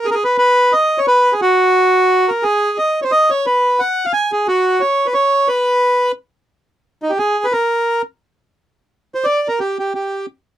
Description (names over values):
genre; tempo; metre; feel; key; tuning
musette; 176 BPM; 3/4; swing 54% on 8ths; B major; A4 = 440 Hz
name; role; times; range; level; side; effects
bandoneon; solo; 0.0-10.3 s; D#4 to G#5; -13 LUFS; right 1 dB; none
room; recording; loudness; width
light reverb; none; -13 LUFS; side -12 dB against mid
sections
0.0-6.5 A section; 6.5-10.6 B section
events
none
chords
none